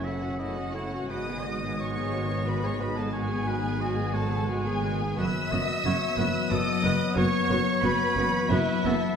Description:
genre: cinematic, emotional film score for orchestra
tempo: 89 BPM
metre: 3/4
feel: rubato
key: unclear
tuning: A4 = 435 Hz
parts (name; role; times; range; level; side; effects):
- rich studio violin section; melody; 0.0-9.2 s; E5 to E6; -32 LUFS; left 2 dB; none
- clear oboe; second line; 0.0-9.2 s; A4 to E5; -34 LUFS; right 3 dB; none
- rich studio violin section; second line; 0.0-9.2 s; E4 to E5; -34 LUFS; left 1 dB; none
- warm studio viola section; accompaniment; 0.0-8.9 s; G#3 to G#4; -34 LUFS; right 1 dB; none
- mellow French horn section; sustained chords; 0.0-9.2 s; E3 to C#4; -33 LUFS; left 4 dB; none
- concert harp; arpeggios; 0.0-9.2 s; F#2 to F#5; -34 LUFS; left 8 dB; none
- warm studio cello section; bass; 0.0-8.9 s; F#2 to G#2; -33 LUFS; right 3 dB; none
- warm studio double bass section; bass; 0.0-8.9 s; F#1 to G#1; -33 LUFS; right 3 dB; none
room: moderate scoring stage reverb, RT60 1.6 s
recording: minimal, uncompressed stereo recording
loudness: -24 LUFS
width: side -7 dB against mid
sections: 0.0-9.2 A section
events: none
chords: 0.0 F#m7; 1.1 G#m7; 5.2 Bsus4/F#

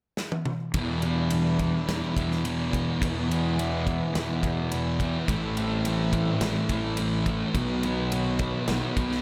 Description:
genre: rock, shoegaze and dream pop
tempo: 106 BPM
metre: 4/4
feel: straight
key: E minor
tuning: A4 = 441 Hz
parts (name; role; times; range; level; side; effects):
- big rock drum kit; drums; 0.2-9.2 s; kick drum, ride cymbal, snare drum, toms; -35 LUFS; equal; none
- thick fuzz guitar; riff; 0.7-9.2 s; E2 to B3; -30 LUFS; equal; distortion, subtle chorus
- fuzz fingered electric bass; bass; 0.7-9.2 s; A1 to E2; -33 LUFS; equal; overdrive
- direct-recorded clean electric guitar; riff; 0.8-9.2 s; A2 to B4; -35 LUFS; equal; reverse reverb
room: wet plate reverb, RT60 1.6 s, studio reverb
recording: dreamy mix soaked in reverb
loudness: -27 LUFS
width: mono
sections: 0.8-9.2 A section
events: drum fill 0.2-0.8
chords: 0.0 N.C.; 0.8 Em7; 3.0 E; 5.3 Am7; 7.6 B

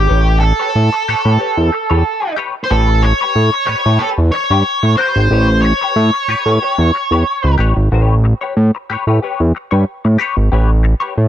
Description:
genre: funk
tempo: 92 BPM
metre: 4/4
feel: straight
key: A mixolydian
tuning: A4 = 440 Hz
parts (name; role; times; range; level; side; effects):
- octave-fuzz lead guitar; melody; 0.0-7.5 s; G4 to C#5; -16 LUFS; right 1 dB; distortion
- fat analog bass; bass; 0.0-11.3 s; G#1 to A2; -11 LUFS; equal; none
- semi-hollow electric guitar; accompaniment; 0.1-11.2 s; G4 to C#5; -22 LUFS; left 6 dB; wah, ensemble chorus
room: digital ambience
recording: none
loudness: -12 LUFS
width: side -11 dB against mid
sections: 0.0-11.3 A section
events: none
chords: 0.0 A9

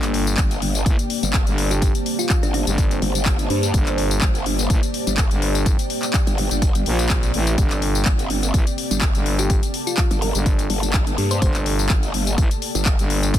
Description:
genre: bass house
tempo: 125 BPM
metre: 4/4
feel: swing 54% on 16ths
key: G minor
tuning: A4 = 440 Hz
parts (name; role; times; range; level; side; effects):
- deep dark ambient pad; sustained chords; 0.0-13.4 s; G3 to C5; -31 LUFS; right 4 dB; chorus, built-in reverb, sidechain pumping
- growling FM bass; bass; 0.0-13.4 s; G1 to Bb1; -21 LUFS; equal; overdrive, sidechain pumping
- house drum kit; drums; 0.0-13.4 s; handclaps, hi-hat, tambourine; -25 LUFS; left 3 dB; overdrive
- ethereal airy pad; texture; 0.0-13.4 s; Bb3 to A5; -29 LUFS; left 3 dB; ensemble chorus, built-in reverb, sidechain pumping
- growl bass; bass; 0.4-13.0 s; G1 to G2; -22 LUFS; equal; chorus, sidechain pumping
- electronic kick drum; drums; 0.4-13.4 s; none; -19 LUFS; equal; overdrive
- thumb-piano-like synth pluck; melody; 1.7-2.6, 9.4-11.5 s; D4 to C5; -29 LUFS; equal; chorus, ping-pong delay
room: little or no reverb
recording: dense, heavily limited modern master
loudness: -17 LUFS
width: side -11 dB against mid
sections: 0.0-13.4 A section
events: none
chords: 0.0 Gmadd9

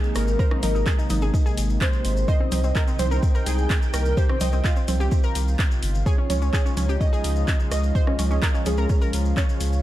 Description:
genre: progressive house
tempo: 127 BPM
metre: 4/4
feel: straight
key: unclear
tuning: A4 = 440 Hz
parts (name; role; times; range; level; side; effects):
- plucky unison lead; melody; 0.0-9.8 s; Ab4 to Eb5; -30 LUFS; equal; lush chorus, cassette tape, sidechain pumping, ping-pong delay
- lush unison pad; sustained chords; 0.0-9.8 s; C3 to G5; -31 LUFS; equal; chorus, sidechain pumping
- analog pluck; arpeggios; 0.0-9.7 s; C4 to C5; -32 LUFS; equal; chorus, sidechain pumping, ping-pong delay
- maracas; percussion; 0.0-9.8 s; none; -39 LUFS; left 5 dB; none
- saturated sub bass; bass; 0.2-9.8 s; G1 to Db2; -22 LUFS; equal; sidechain pumping
- deep house drum kit; drums; 0.2-9.7 s; handclaps, hi-hat; -30 LUFS; equal; none
- electronic rim click and congas; percussion; 0.2-9.5 s; none; -32 LUFS; right 1 dB; sidechain pumping on perc, sidechain pumping on snare
- electronic kick drum; drums; 0.4-9.5 s; none; -21 LUFS; equal; none
room: digital ambience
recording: dark, warm production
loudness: -19 LUFS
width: side -14 dB against mid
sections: 0.0-9.8 A section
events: none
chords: 0.0 Abadd9; 2.3 Cm; 6.1 Dbadd9

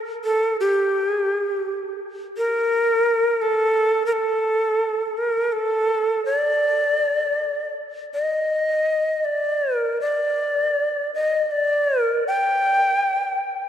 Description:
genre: japanese traditional, Japanese chamber music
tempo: 77-87 BPM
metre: 4/4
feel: rubato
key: D miyako bushi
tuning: A4 = 439 Hz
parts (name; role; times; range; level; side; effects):
- breathy bright shakuhachi; solo; 0.2-13.7 s; G4 to G5; -19 LUFS; equal; none
room: wet cathedral reverb, RT60 4.6 s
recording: dark, warm production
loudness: -19 LUFS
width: side -9 dB against mid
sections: 0.0-13.7 A section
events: none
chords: none

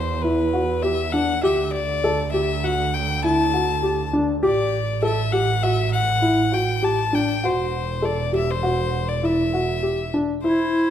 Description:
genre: contemporary instrumental, chamber music in an uneven meter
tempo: 100 BPM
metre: 5/4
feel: straight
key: E minor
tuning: A4 = 437 Hz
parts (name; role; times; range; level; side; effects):
- clear violin; melody; 0.0-10.9 s; B4 to A5; -25 LUFS; left 6 dB; none
- warm double bass; bass; 0.0-10.4 s; E1 to E2; -26 LUFS; right 4 dB; none
- dark baby grand piano; arpeggios; 0.2-10.8 s; D4 to A4; -22 LUFS; equal; none
- bright clarinet; second line; 10.4-10.9 s; E4; -21 LUFS; equal; none
room: moderate recital hall reverb, RT60 1.6 s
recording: none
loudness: -19 LUFS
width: side -10 dB against mid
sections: 0.0-10.4 A section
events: none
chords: 0.0 Esus2; 1.4 Dsus24; 4.4 A5; 7.4 Esus2

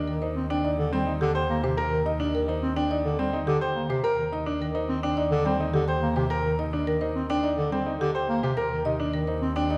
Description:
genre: classical, minimalist pattern music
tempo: 106 BPM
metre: 4/4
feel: straight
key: Eb major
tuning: A4 = 441 Hz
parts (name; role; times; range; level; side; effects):
- warm grand piano; arpeggios; 0.0-9.8 s; C4 to C5; -31 LUFS; equal; none
- warm double bass; bass; 0.0-9.8 s; Eb2; -34 LUFS; equal; none
- marimba with medium mallets; melody; 0.1-9.8 s; G4 to G5; -33 LUFS; equal; none
- mellow bass clarinet; accompaniment; 0.1-9.5 s; C3 to C4; -32 LUFS; equal; none
room: wet scoring stage reverb, RT60 1.7 s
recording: heard from further back in the room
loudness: -26 LUFS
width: mono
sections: 0.0-9.8 A section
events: none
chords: 0.0 Eb6

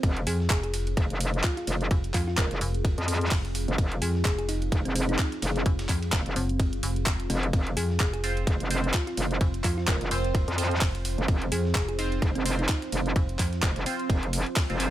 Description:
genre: bass house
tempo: 128 BPM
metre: 4/4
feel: swing 57% on 16ths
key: F minor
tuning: A4 = 440 Hz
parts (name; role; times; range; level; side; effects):
- deep dark ambient pad; sustained chords; 0.0-14.9 s; C4 to C5; -36 LUFS; right 2 dB; chorus, built-in reverb, sidechain pumping
- metallic wobble bass; bass; 0.0-14.9 s; F1 to F2; -28 LUFS; equal; chorus, overdrive, sidechain pumping
- breakbeat sampler-style drum kit; drums; 0.0-14.9 s; hi-hat, ride cymbal, snare drum; -42 LUFS; right 2 dB; none
- electronic kick drum; drums; 0.0-14.7 s; none; -25 LUFS; equal; overdrive, studio reverb
- garage drum kit; drums; 0.0-14.9 s; handclaps, hi-hat; -32 LUFS; right 1 dB; overdrive, studio reverb
- thumb-piano-like synth pluck; melody; 0.3-14.9 s; C4 to Bb4; -35 LUFS; equal; chorus, dub echo
- metallic FM bass; bass; 0.3-13.6 s; F1 to F2; -29 LUFS; equal; overdrive, sidechain pumping
- band-passed chord stab; stabs; 8.2-14.9 s; C4 to C5; -36 LUFS; right 1 dB; phaser, analog chorus, sidechain pumping, dub echo
room: little or no reverb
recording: none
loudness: -24 LUFS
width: side -13 dB against mid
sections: 0.0-14.9 A section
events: none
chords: 0.0 F5

